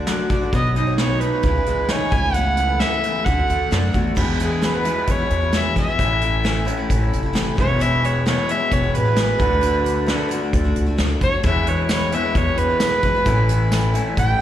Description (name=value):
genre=folk rock and heartland rock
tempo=132 BPM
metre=4/4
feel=straight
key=E major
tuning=A4 = 439 Hz
part: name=picked twelve-string acoustic guitar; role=accompaniment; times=0.0-14.4 s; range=E2 to D5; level=-27 LUFS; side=left 4 dB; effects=slapback echo
part: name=electric guitar through a small old amp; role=riff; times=0.0-14.4 s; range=E2 to D5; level=-26 LUFS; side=equal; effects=slapback echo
part: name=upright bass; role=bass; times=0.0-14.4 s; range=E1 to F#2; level=-22 LUFS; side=equal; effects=none
part: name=soft brush drum kit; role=drums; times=0.1-14.3 s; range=crash cymbal, hi-hat, kick drum, snare drum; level=-23 LUFS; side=equal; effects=none
part: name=warm fiddle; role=melody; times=0.5-14.4 s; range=G#4 to G#5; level=-21 LUFS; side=right 1 dB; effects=slapback echo
part: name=tambourine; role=percussion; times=11.9-13.8 s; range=none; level=-36 LUFS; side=right 4 dB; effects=none
room=little or no reverb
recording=live gig heard through the venue's PA, recital hall reverb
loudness=-17 LUFS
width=side -11 dB against mid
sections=0.0-4.2 A section; 4.2-14.4 B section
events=fiddle solo 4.2-14.4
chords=0.0 D; 0.5 Badd9; 1.4 C#madd9; 2.1 Aadd9/C#; 3.3 D; 4.2 E; 6.0 A; 7.6 E; 9.4 D; 11.4 E; 13.3 A